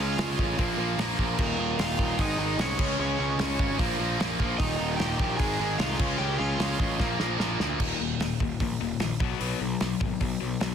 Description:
punk rock; 150 BPM; 4/4; straight; A4 = 438 Hz
overdriven semi-hollow guitar; melody; 0.0-7.6 s; Bb3 to Ab5; -32 LUFS; right 1 dB
tight distorted guitar; riff; 0.0-10.7 s; Eb2 to Db4; -31 LUFS; left 14 dB; distortion
tight distorted guitar; riff; 0.0-7.8 s; Eb2 to Db4; -30 LUFS; right 15 dB; distortion
fuzz picked electric bass; bass; 0.0-10.7 s; Eb1 to D2; -32 LUFS; equal; overdrive
loose indie drum kit; drums; 0.2-10.7 s; crash cymbal, hi-hat, kick drum, snare drum; -30 LUFS; equal
little or no reverb; dense, heavily limited modern master; -25 LUFS; side -8 dB against mid
0.0-7.8 A section; 7.8-10.7 B section
drum fill 7.0-7.8
0.0 Db; 0.6 Bb5; 1.4 Eb5; 2.2 Ab; 2.8 Db5; 3.8 Bb5; 4.6 Eb; 5.4 Ab; 6.0 Db; 7.0 Bb; 7.8 Eb5; 9.2 B5

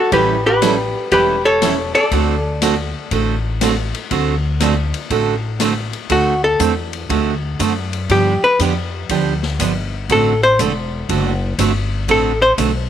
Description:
country, western swing; 120 BPM; 4/4; swing 66% on 8ths; D mixolydian; A4 = 439 Hz
hollow-body jazz guitar; melody; 0.0-12.5 s; F#4 to D5; -15 LUFS; left 2 dB
archtop guitar, miked and amplified; second line; 0.0-5.6 s; F#4 to A4; -23 LUFS; right 9 dB
picked steel-string acoustic guitar; accompaniment; 0.1-12.7 s; D3 to A4; -20 LUFS; right 9 dB
upright bass; bass; 0.1-12.9 s; E1 to G2; -21 LUFS; left 2 dB
swinging big-band drum kit; drums; 0.1-12.7 s; hi-hat, kick drum, ride cymbal, snare drum; -25 LUFS; left 8 dB
light reverb, small room ambience; 1960s-style stereo with parts hard left and right; -14 LUFS; side -10 dB against mid
0.0-6.1 A section; 6.1-12.9 B section
hollow-body jazz guitar solo 6.1-12.9
0.0 A7; 2.1 D7; 8.1 G7; 10.1 D7

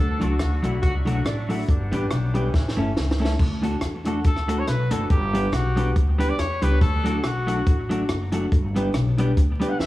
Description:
ska; 140 BPM; 4/4; swing 55% on 8ths; D major; A4 = 439 Hz
warm horn section; melody; 0.0-3.2 s; E3 to A4; -32 LUFS; left 1 dB; tape echo
upright bass; bass; 0.0-9.9 s; F#1 to E2; -24 LUFS; equal
clean electric guitar; accompaniment; 0.2-9.7 s; F#3 to A4; -28 LUFS; right 1 dB; tape echo
clear upright piano; stabs; 0.2-9.8 s; C#4 to B4; -29 LUFS; left 1 dB
compact cocktail drum kit; drums; 0.2-9.9 s; crash cymbal, hi-hat, kick drum, rim click, snare drum; -23 LUFS; equal
warm trumpet; melody; 4.1-9.9 s; F#4 to F#5; -28 LUFS; equal; tape echo
light reverb; vinyl crackle, small room ambience; -20 LUFS; side -16 dB against mid
0.0-3.4 A section; 3.4-9.9 B section
drum fill 2.5-3.4; trumpet solo 3.4-9.9
0.0 D; 1.7 G; 2.5 A; 3.4 D; 5.1 G; 6.8 D; 8.5 G

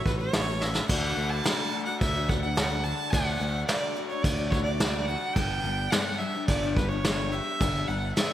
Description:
folk rock and heartland rock; 107 BPM; 4/4; straight; D major; A4 = 439 Hz
rich fiddle; melody; 0.0-8.3 s; B4 to A5; -31 LUFS; right 2 dB
picked steel-string acoustic guitar; accompaniment; 0.0-8.3 s; G2 to G4; -33 LUFS; left 7 dB; lush chorus
picked electric bass; bass; 0.1-8.1 s; G1 to D2; -31 LUFS; right 1 dB
soft brush drum kit; drums; 0.1-8.3 s; crash cymbal, hi-hat, kick drum, snare drum; -28 LUFS; right 1 dB
light reverb, small room ambience; bright 1980s-style digital production; -25 LUFS; side -12 dB against mid
0.9-8.3 A section
drum fill 0.6
0.0 A6; 0.9 D; 5.4 G

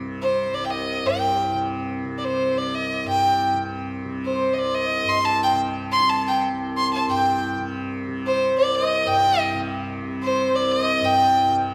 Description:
indian classical, Hindustani; 180 BPM; 3/4; straight; C raga shivaranjani; A4 = 441 Hz
tanpura; drone; 0.0-11.7 s; C2 to C3; -30 LUFS; equal
clear violin; melody; 0.2-11.5 s; C5 to C6; -23 LUFS; equal
pedal harmonium; second line; 3.2-11.6 s; C5 to C6; -29 LUFS; equal
wet concert hall reverb, RT60 2.1 s; recorded in a church or concert hall; -22 LUFS; mono
0.0-7.1 A section; 7.1-11.7 B section
speeding up 0.0-11.7

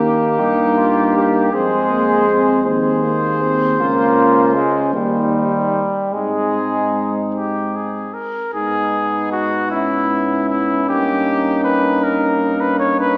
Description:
classical, brass quintet; 52 BPM (dotted quarters); 6/8; rubato; Ab major; A4 = 440 Hz
clear trumpet; melody; 0.0-13.2 s; E4 to C#5; -20 LUFS; left 1 dB
warm flugelhorn; second line; 0.0-13.2 s; Eb4 to Ab4; -23 LUFS; equal
bright trombone; accompaniment; 0.0-13.2 s; G3 to B3; -19 LUFS; equal
mellow French horn; accompaniment; 0.0-13.2 s; Bb3 to D#4; -22 LUFS; equal
mellow tuba; bass; 0.0-13.2 s; Db2 to G#2; -23 LUFS; equal
wet scoring stage reverb, RT60 1.6 s; recorded in a church or concert hall, small speaker sound; -14 LUFS; side -28 dB against mid
0.0-8.5 A section; 8.5-13.2 B section
0.0 Eb; 1.5 Fm; 3.8 Bbm/Db; 4.9 Eb; 6.1 Ab; 8.5 G#m; 9.7 E6/G#; 10.9 D#7/G

